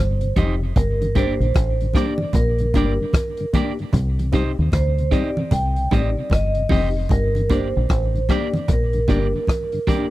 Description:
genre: roots reggae.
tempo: 76 BPM.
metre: 4/4.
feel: swing 63% on 16ths.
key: G minor.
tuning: A4 = 440 Hz.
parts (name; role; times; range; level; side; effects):
vibraphone with medium mallets; melody; 0.0-9.9 s; Bb4 to G5; -25 LUFS; right 2 dB; tape echo.
deep dub fingered electric bass; bass; 0.0-9.3 s; F1 to Eb2; -20 LUFS; equal; none.
mellow tonewheel organ; accompaniment; 0.2-10.0 s; G2 to Eb4; -29 LUFS; left 2 dB; slow rotary speaker, tube saturation, tape echo.
vintage drum kit; drums; 0.2-10.1 s; hi-hat, kick drum, rim click; -22 LUFS; equal; none.
electric guitar at the edge of break-up; accompaniment; 0.4-10.1 s; D4 to Eb5; -28 LUFS; right 6 dB; tape echo.
reed electric piano; stabs; 0.4-10.1 s; Bb3 to G4; -26 LUFS; left 5 dB; overdrive.
congas; percussion; 0.4-10.1 s; none; -27 LUFS; right 2 dB; none.
room: little or no reverb.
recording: dry, close 1970s-style studio recording.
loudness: -17 LUFS.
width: side -16 dB against mid.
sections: 0.0-10.1 A section.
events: none.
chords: 0.0 Cm; 0.8 Gm; 3.9 Cm; 7.1 Gm.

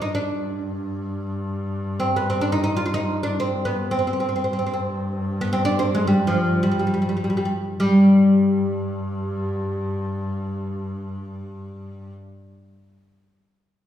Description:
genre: Arabic maqam ensemble.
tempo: free time.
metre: none.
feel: none.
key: G maqam hijaz.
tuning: A4 = 440 Hz.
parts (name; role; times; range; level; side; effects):
oud; melody; 0.0-12.1 s; F3 to F4; -20 LUFS; equal; none.
bright double bass; drone; 0.0-12.2 s; G2; -28 LUFS; left 1 dB; none.
room: wet recital hall reverb, RT60 1.8 s.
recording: heard from further back in the room.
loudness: -20 LUFS.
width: side -11 dB against mid.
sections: 0.0-7.8 A section; 7.8-11.5 B section.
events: none.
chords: none.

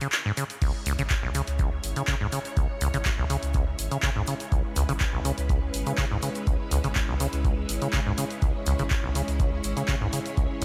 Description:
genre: acid house.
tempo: 123 BPM.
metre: 4/4.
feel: straight.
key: C# minor.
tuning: A4 = 440 Hz.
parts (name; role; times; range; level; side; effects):
deep acid bass; riff; 0.0-10.6 s; B1 to C#3; -32 LUFS; equal; tape echo.
punchy analog drum machine; drums; 0.0-10.6 s; crash cymbal, handclaps, hi-hat; -34 LUFS; equal; none.
tube shaker; percussion; 0.0-10.6 s; none; -43 LUFS; equal; none.
string machine, full ensemble; sustained chords; 0.6-10.6 s; G#3 to C#5; -37 LUFS; equal; ensemble chorus, sidechain pumping.
electronic kick drum; drums; 0.6-10.5 s; none; -29 LUFS; equal; none.
warm sub bass; bass; 0.9-10.6 s; G#1 to C#2; -32 LUFS; equal; sidechain pumping.
room: light reverb, digital ambience.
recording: none.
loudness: -27 LUFS.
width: mono.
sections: 0.0-10.6 A section.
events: kick drops out 0.1-0.6.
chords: 0.0 C#m.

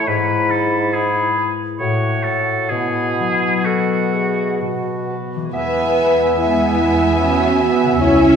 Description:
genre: classical.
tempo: 62-75 BPM.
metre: 3/4.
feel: rubato.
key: E major.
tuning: A4 = 440 Hz.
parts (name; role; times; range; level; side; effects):
clear clarinet; second line; 0.0-8.4 s; E4 to E5; -24 LUFS; left 1 dB; none.
clear oboe; second line; 0.0-8.4 s; F#4 to E5; -22 LUFS; right 2 dB; none.
mellow hollow concert flute; second line; 0.0-8.4 s; F#5 to B5; -26 LUFS; left 2 dB; none.
warm bassoon; accompaniment; 0.0-8.4 s; G#2 to C#4; -24 LUFS; right 1 dB; none.
concert harp; arpeggios; 0.0-8.4 s; G#2 to E5; -24 LUFS; left 5 dB; none.
dark symphonic violin section; melody; 5.5-8.4 s; G#5; -26 LUFS; equal; none.
warm symphonic violin section; second line; 5.5-8.4 s; E5; -26 LUFS; left 3 dB; none.
clear symphonic viola section; accompaniment; 5.5-8.4 s; B3 to C#4; -25 LUFS; right 1 dB; none.
warm symphonic double bass section; bass; 5.5-8.4 s; C#2 to E2; -23 LUFS; right 2 dB; none.
mellow French horn section; sustained chords; 5.6-8.4 s; E4 to B4; -16 LUFS; equal; none.
warm symphonic cello section; bass; 6.4-8.4 s; G#3 to C#4; -20 LUFS; right 3 dB; none.
room: wet recital hall reverb, RT60 1.7 s.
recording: recorded in a church or concert hall.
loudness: -15 LUFS.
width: side -7 dB against mid.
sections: 0.0-5.5 A section; 5.5-8.4 B section.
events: none.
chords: 0.1 E/G#; 1.8 F#m/A; 2.7 Bsus4; 4.6 B5; 5.5 E.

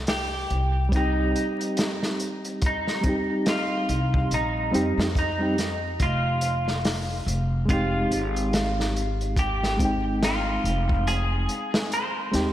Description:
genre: trip hop.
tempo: 71 BPM.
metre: 4/4.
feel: swing 59% on 16ths.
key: F minor.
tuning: A4 = 439 Hz.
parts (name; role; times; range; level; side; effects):
upright bass; bass; 0.0-12.5 s; F1 to F2; -27 LUFS; equal; tube saturation.
semi-hollow electric guitar; melody; 0.1-12.5 s; Eb4 to C5; -28 LUFS; equal; lush chorus, tape echo.
crunchy breakbeat drum kit; drums; 0.1-12.5 s; hi-hat, kick drum, snare drum; -28 LUFS; equal; none.
reed electric piano; accompaniment; 0.9-12.5 s; G3 to G5; -27 LUFS; equal; tremolo, vintage 12-bit sampler grit, tape echo.
room: moderate lush hall reverb, RT60 2.5 s.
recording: dreamy mix soaked in reverb, vinyl crackle.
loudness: -22 LUFS.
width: side -12 dB against mid.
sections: 0.0-12.5 A section.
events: none.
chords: 0.0 Cm; 6.0 Fm7.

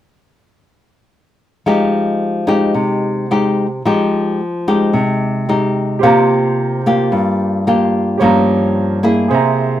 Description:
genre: bossa nova.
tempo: 110 BPM.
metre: 4/4.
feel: straight.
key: F minor.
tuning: A4 = 439 Hz.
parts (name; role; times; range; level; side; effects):
nylon-string guitar; accompaniment; 1.7-9.8 s; G2 to Ab4; -13 LUFS; left 1 dB; none.
clear baby grand piano; accompaniment; 6.0-9.8 s; G4 to Bb5; -19 LUFS; right 6 dB; none.
room: moderate studio reverb, RT60 0.6 s.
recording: none.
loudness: -13 LUFS.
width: side -12 dB against mid.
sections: 1.7-9.8 A section.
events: grand piano fill 9.6.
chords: 1.7 Fm9; 6.0 C7sus4; 8.2 Gm7b5.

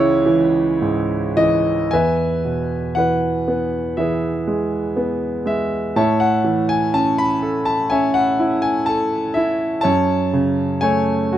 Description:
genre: classical, lyrical solo piano.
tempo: 53-62 BPM.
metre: 4/4.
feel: rubato.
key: E major.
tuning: A4 = 440 Hz.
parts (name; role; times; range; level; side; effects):
clear concert grand piano; solo; 0.0-11.4 s; C#2 to B5; -16 LUFS; equal; none.
room: light reverb.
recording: none.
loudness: -16 LUFS.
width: side -11 dB against mid.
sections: 0.0-1.9 A section; 1.9-11.4 B section.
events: none.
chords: 0.0 C#madd9; 1.9 E; 6.0 A; 9.9 F#madd9.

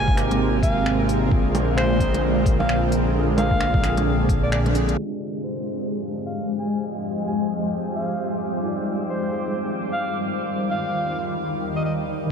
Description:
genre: future garage.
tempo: 131 BPM.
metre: 4/4.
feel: swing 60% on 16ths.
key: F dorian.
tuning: A4 = 440 Hz.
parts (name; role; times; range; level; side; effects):
breathy alto saxophone; melody; 0.0-11.9 s; C5 to Ab5; -28 LUFS; equal; vintage 12-bit sampler grit, tape echo.
tine electric piano; accompaniment; 0.0-12.3 s; C3 to Eb5; -29 LUFS; right 1 dB; fast stereo tremolo, sidechain pumping, analog delay.
granular cloud pad; sustained chords; 0.0-12.3 s; Eb3 to D6; -25 LUFS; equal; built-in reverb, wide subtle chorus, sidechain pumping.
swelling detuned saw bass; bass; 0.0-5.0 s; Ab1 to Bb1; -23 LUFS; equal; sidechain pumping.
electronic kick drum; drums; 0.1-4.4 s; none; -22 LUFS; equal; none.
organic electronic drum kit; drums; 0.2-5.0 s; bongos, finger snaps, hi-hat; -30 LUFS; right 2 dB; none.
backwards swelling texture; texture; 6.8-12.3 s; C4 to C5; -36 LUFS; right 1 dB; built-in reverb.
room: wet huge ambient reverb, RT60 7.5 s.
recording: dreamy mix soaked in reverb, cassette tape, low-pass filter.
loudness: -20 LUFS.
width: side -6 dB against mid.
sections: 0.0-5.0 A section; 5.0-12.3 B section.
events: band accent 4.5; filter sweep 5.0-12.3.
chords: 0.0 Abmaj9; 1.3 Bb9; 5.0 Fm9; 8.6 Ebmaj9.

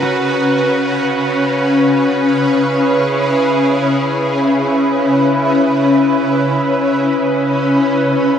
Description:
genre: ambient.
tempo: free time.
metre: none.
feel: none.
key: C# minor.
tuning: A4 = 440 Hz.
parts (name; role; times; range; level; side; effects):
shimmering ambient pad; sustained chords; 0.0-8.4 s; C#3 to B4; -12 LUFS; equal; chorus, built-in reverb.
concert harp; arpeggios; 0.0-3.0 s; F#4; -26 LUFS; right 3 dB; dub echo.
room: wet spring reverb, RT60 2.5 s.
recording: echo-heavy mix.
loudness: -12 LUFS.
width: side -8 dB against mid.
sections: 0.0-3.6 A section; 3.6-8.4 A section.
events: none.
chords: 0.0 F#7sus4/C#; 3.6 C#m7.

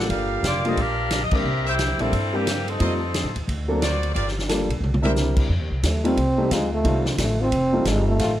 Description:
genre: jazz, big band swing.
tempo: 178 BPM.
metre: 4/4.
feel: swing 62% on 8ths.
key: F mixolydian.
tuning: A4 = 440 Hz.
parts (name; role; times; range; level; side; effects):
warm upright piano; accompaniment; 0.0-8.2 s; F#3 to Bb4; -26 LUFS; left 1 dB; none.
clear trumpet section; stabs; 0.0-5.1 s; E4 to F5; -30 LUFS; right 2 dB; none.
upright bass; bass; 0.0-8.4 s; F1 to A2; -25 LUFS; equal; none.
vintage drum kit; drums; 0.1-8.3 s; crash cymbal, hi-hat, kick drum, ride cymbal, snare drum, toms; -26 LUFS; equal; none.
bright saxophone section; melody; 0.5-3.4 s; E3 to F5; -25 LUFS; left 1 dB; none.
mellow trombone; melody; 5.9-8.4 s; Ab3 to C4; -23 LUFS; right 1 dB; none.
warm trombone section; sustained chords; 6.5-8.3 s; Eb3 to F4; -29 LUFS; left 3 dB; none.
room: light reverb.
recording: close, detailed microphones.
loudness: -20 LUFS.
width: side -12 dB against mid.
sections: 0.0-5.5 A section; 5.5-8.4 B section.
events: band accent 1.3; drum fill 4.8-5.2; trombone solo 5.5-8.4.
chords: 0.1 Gm7; 1.4 C7; 2.8 F7; 3.5 D7b13; 4.1 Gm7; 4.8 C9; 5.5 F7.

